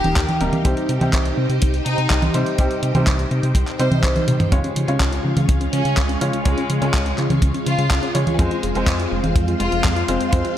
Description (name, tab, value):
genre	italo disco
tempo	124 BPM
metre	4/4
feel	straight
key	unclear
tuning	A4 = 438 Hz
part	clear chamber violin section	melody	0.0-10.6 s	Ab3 to C5	-26 LUFS	left 1 dB	digital delay
part	phased string machine	sustained chords	0.0-10.6 s	Ab3 to G5	-26 LUFS	left 1 dB	ensemble chorus, phaser
part	bright grand piano	stabs	0.0-10.6 s	C3 to Db5	-27 LUFS	equal	low-pass filter
part	round analog bass	bass	0.0-10.4 s	Eb1 to Db3	-22 LUFS	equal	none
part	detuned 8-bit digital drum machine	drums	0.0-10.5 s	congas, handclaps, hi-hat, toms	-24 LUFS	right 1 dB	gated reverb
part	kick drum	drums	0.2-10.4 s	none	-19 LUFS	equal	none
part	wide unison pluck	arpeggios	4.5-10.5 s	Db2 to F4	-29 LUFS	left 2 dB	digital delay
room	light reverb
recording	none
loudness	-16 LUFS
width	side -11 dB against mid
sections	0.0-4.5 A section; 4.5-10.6 B section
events	drum fill 4.3; filter sweep on synth arpeggio sound 4.5-10.6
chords	0.0 Eb; 0.6 Cm; 4.5 Db; 8.4 Fm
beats	0.17 | 0.65 1.13 1.62 2.10 | 2.58 3.07 3.55 4.04 | 4.52 5.00 5.49 5.97 | 6.46 6.94 7.42 7.91 | 8.39 8.88 9.36 9.84 | 10.33